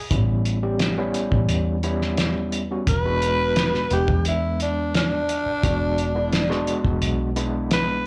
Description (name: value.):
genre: straight-eighth soul blues.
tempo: 87 BPM.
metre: 4/4.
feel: straight.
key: E mixolydian.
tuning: A4 = 440 Hz.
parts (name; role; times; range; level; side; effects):
growling tenor saxophone; melody; 0.0-8.1 s; D4 to B4; -26 LUFS; equal; slapback echo.
overdriven tine electric piano; accompaniment; 0.1-8.1 s; G3 to B4; -28 LUFS; equal; medium tremolo, slapback echo.
vintage muted fingered electric bass; bass; 0.1-8.1 s; E1 to E2; -27 LUFS; equal; none.
cloth-damped thuddy drum kit; drums; 0.1-7.9 s; hi-hat, kick drum, snare drum; -27 LUFS; equal; none.
room: light reverb.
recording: live gig heard through the venue's PA, club reverb.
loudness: -22 LUFS.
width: mono.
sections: 0.0-8.1 A section.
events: none.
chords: 0.1 A9; 2.9 E9.